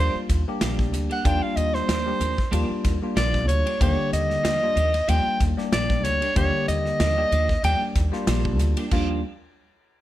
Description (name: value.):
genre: electric jazz fusion.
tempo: 94 BPM.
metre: 4/4.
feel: swing 55% on 16ths.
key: Eb major.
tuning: A4 = 440 Hz.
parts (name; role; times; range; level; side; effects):
warm soprano saxophone; melody; 0.0-7.8 s; C5 to G5; -24 LUFS; right 1 dB; none.
bell-like tine electric piano; accompaniment; 0.0-9.2 s; D3 to G4; -28 LUFS; left 3 dB; phaser.
clean electric guitar; stabs; 0.0-9.2 s; F3 to G4; -33 LUFS; right 4 dB; ensemble chorus, slapback echo.
upright bass; bass; 0.0-9.2 s; Bb1 to Eb2; -24 LUFS; equal; none.
modern studio drum kit; drums; 0.3-9.1 s; crash cymbal, hi-hat, kick drum, ride cymbal, snare drum; -27 LUFS; equal; none.
room: light reverb.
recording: none.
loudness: -20 LUFS.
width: side -14 dB against mid.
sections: 0.0-8.9 A section; 8.9-10.0 B section.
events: soprano saxophone solo 0.0-8.9.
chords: 0.0 Ebmaj9.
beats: 0.62 | 1.26 1.89 2.53 3.17 | 3.81 4.44 5.08 5.72 | 6.36 7.00 7.64 8.28 | 8.92.